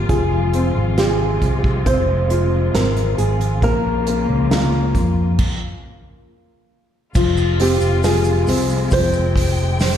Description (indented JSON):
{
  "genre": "pop ballad",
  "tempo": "68 BPM",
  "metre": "4/4",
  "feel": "straight",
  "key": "F minor",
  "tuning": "A4 = 439 Hz",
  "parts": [
    { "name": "flamenco guitar", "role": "melody", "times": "0.0-9.9 s", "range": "F4 to C5", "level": "-22 LUFS", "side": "right 3 dB", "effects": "slapback echo, ping-pong delay" },
    { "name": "warm baby grand piano", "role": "accompaniment", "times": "0.0-10.0 s", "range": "F3 to F4", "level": "-22 LUFS", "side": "left 5 dB", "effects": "slapback echo" },
    { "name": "muted studio string section", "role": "sustained chords", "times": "0.0-10.0 s", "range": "C3 to G5", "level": "-26 LUFS", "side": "equal", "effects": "none" },
    { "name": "fingered electric bass", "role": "bass", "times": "0.0-10.0 s", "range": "F1 to F2", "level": "-19 LUFS", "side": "equal", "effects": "none" },
    { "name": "unplugged drum kit", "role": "drums", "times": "0.1-10.0 s", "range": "crash cymbal, hi-hat, kick drum, snare drum", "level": "-22 LUFS", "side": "right 1 dB", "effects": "none" },
    { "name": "tube shaker", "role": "percussion", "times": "7.2-10.0 s", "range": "none", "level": "-39 LUFS", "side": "left 3 dB", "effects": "none" }
  ],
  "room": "light reverb",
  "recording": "live gig heard through the venue's PA, recital hall reverb",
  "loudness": "-15 LUFS",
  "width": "side -9 dB against mid",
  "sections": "0.0-7.2 A section; 7.2-10.0 B section",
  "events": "stop 5.4-7.2",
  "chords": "0.1 Fm; 3.6 Bbm; 5.4 N.C.; 7.2 Fm"
}